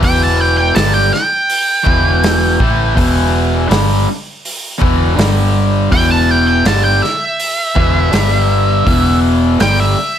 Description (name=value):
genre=blues rock power trio and southern rock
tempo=81 BPM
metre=4/4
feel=straight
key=E minor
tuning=A4 = 441 Hz
part: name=octave-fuzz lead guitar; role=melody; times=0.0-10.2 s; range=E5 to A5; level=-15 LUFS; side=right 1 dB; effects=wah, distortion
part: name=raw garage guitar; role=riff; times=0.0-10.0 s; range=E2 to A3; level=-15 LUFS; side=left 1 dB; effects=overdrive
part: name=hollow-body short-scale fingered electric bass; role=bass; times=0.0-9.9 s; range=E1 to A1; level=-15 LUFS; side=equal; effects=none
part: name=vintage drum kit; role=drums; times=0.0-9.8 s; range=hi-hat, kick drum, snare drum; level=-18 LUFS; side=equal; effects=none
room=small room ambience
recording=none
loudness=-10 LUFS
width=side -9 dB against mid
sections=0.0-10.2 A section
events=none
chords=0.0 Em; 5.2 G5; 5.9 Em; 8.1 G5; 8.9 Em